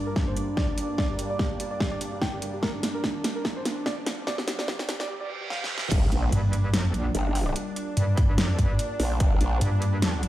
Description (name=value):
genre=heavy wobble dubstep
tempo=146 BPM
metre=4/4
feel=swing 55% on 16ths, half-time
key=G minor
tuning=A4 = 439 Hz
part: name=dark concert grand piano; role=melody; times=0.0-5.9 s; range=D4 to G5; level=-34 LUFS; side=equal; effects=low-pass filter, tape echo
part: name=lush unison pad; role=sustained chords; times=0.0-10.3 s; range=G2 to D5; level=-34 LUFS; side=right 1 dB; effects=chorus, phaser, sidechain pumping
part: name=riser, reverse cymbal and impact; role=sound effects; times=2.1-7.6 s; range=none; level=-36 LUFS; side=right 1 dB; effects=none
part: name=warbly tape-like pad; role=texture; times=1.7-10.3 s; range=G3 to G5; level=-42 LUFS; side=equal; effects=chorus, built-in reverb, phaser, sidechain pumping
part: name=dubstep drum kit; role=drums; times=0.2-10.3 s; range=crash cymbal, hi-hat, snare drum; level=-30 LUFS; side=equal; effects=small room ambience
part: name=electronic kick drum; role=drums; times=0.2-9.3 s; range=none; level=-26 LUFS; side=equal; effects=small room ambience
part: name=growl bass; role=bass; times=5.9-9.6 s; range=G1 to Bb1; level=-25 LUFS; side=equal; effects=chorus, overdrive
part: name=metallic wobble bass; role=bass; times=6.3-10.3 s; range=Bb1 to G2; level=-24 LUFS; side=equal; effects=chorus, overdrive
room=light reverb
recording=played on a big sound system in a bare room, stone room reverb, high-pass filter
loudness=-24 LUFS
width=side -14 dB against mid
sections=0.0-5.9 A section; 5.9-10.3 B section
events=build-up 0.0-5.9; drum fill 0.0-5.1, 5.5-5.9; filter sweep on grand piano 0.0-5.9; filter sweep 0.0-5.9; reverse cymbal 5.1-5.9; drop 5.9-10.3; impact 5.9-7.6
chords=0.0 Gm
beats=0.16 0.57 | 0.98 1.39 1.80 2.22 | 2.63 3.04 3.45 3.86 | 4.27 4.68 5.09 5.50 | 5.92 6.33 6.74 7.15 | 7.56 7.97 8.38 8.79 | 9.20 9.61 10.02